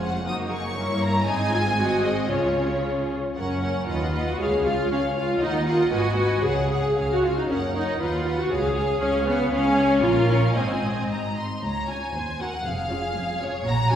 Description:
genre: quick classical-period movement for string orchestra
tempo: 117 BPM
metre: 2/4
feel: straight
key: Db major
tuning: A4 = 440 Hz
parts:
  - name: warm symphonic violin section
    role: melody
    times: 0.0-14.0 s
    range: Db5 to Eb6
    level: -30 LUFS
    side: left 1 dB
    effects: none
  - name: dark symphonic violin section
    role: second line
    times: 0.0-14.0 s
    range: F4 to E#5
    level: -29 LUFS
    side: left 2 dB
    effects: none
  - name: rich symphonic viola section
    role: accompaniment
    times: 0.0-14.0 s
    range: Ab3 to G#4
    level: -24 LUFS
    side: equal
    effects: none
  - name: clear symphonic double bass section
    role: bass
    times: 0.0-14.0 s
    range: F1 to D#2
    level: -30 LUFS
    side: right 1 dB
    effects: none
  - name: warm symphonic cello section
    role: bass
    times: 0.0-14.0 s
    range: C#2 to Db3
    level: -29 LUFS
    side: right 1 dB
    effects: none
room: wet scoring stage reverb, RT60 1.5 s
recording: recorded in a church or concert hall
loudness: -21 LUFS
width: side -9 dB against mid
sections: 0.0-3.4 A section; 3.4-11.6 B section; 11.6-14.0 A section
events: none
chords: 0.3 Ebm/Gb; 0.8 Gdim7; 1.3 Ab; 1.8 Ab7; 2.3 Db; 3.4 F#; 3.9 B/D#; 4.4 C#; 5.4 D#m; 5.9 G#m; 6.4 C#sus4; 7.0 C#; 7.5 F#; 8.0 B/D#; 8.5 C#; 10.0 Bbm; 10.6 Ab; 11.6 Db; 12.2 Ab7/Eb; 12.7 Db/F

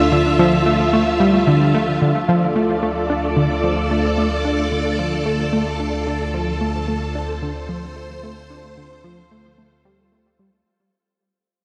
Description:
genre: ambient, sequencer-driven space music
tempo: 111 BPM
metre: 4/4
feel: straight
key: unclear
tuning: A4 = 440 Hz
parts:
  - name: string machine, full ensemble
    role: sustained chords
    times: 0.0-10.7 s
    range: F4 to E5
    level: -23 LUFS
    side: equal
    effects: ensemble chorus
  - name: tight sequenced synth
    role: riff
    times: 0.0-10.5 s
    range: D3 to D4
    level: -21 LUFS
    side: equal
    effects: chorus, tape echo
  - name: fat analog bass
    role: bass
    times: 0.0-10.6 s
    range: D2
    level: -28 LUFS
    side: equal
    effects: none
room: wet lush hall reverb, RT60 2.7 s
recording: dreamy mix soaked in reverb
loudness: -18 LUFS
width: mono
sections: 0.0-2.0 A section; 2.0-10.7 B section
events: fade-out 2.0-10.7; filter sweep on synth arpeggio sound 2.0-10.7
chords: 0.0 Dm

